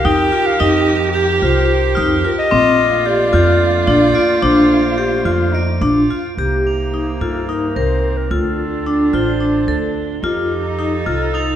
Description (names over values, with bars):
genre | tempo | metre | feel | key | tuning
contemporary instrumental, chamber music in an uneven meter | 218 BPM (eighths) | 7/8 | straight | C dorian | A4 = 440 Hz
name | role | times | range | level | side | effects
mellow clarinet | melody | 0.0-11.6 s | G4 to G5 | -20 LUFS | left 3 dB | none
dark cello | second line | 0.0-11.6 s | Bb3 to G4 | -20 LUFS | right 5 dB | none
clear woodwind section | sustained chords | 0.0-11.6 s | C3 to Bb4 | -27 LUFS | left 1 dB | none
vibraphone with medium hard mallets | arpeggios | 0.0-11.5 s | C4 to Bb4 | -18 LUFS | left 1 dB | none
upright bass | bass | 0.0-11.6 s | A1 to G2 | -20 LUFS | right 1 dB | none
crotales | texture | 1.9-11.6 s | D6 to G7 | -28 LUFS | left 1 dB | none
room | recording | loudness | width
moderate concert hall reverb, RT60 1.8 s | minimal, uncompressed stereo recording | -13 LUFS | side -10 dB against mid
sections
0.0-6.4 A section; 6.4-11.6 B section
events
none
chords
0.0 F7sus4; 2.5 Bbmaj9; 6.4 Cm7; 8.3 Dm7; 10.2 F7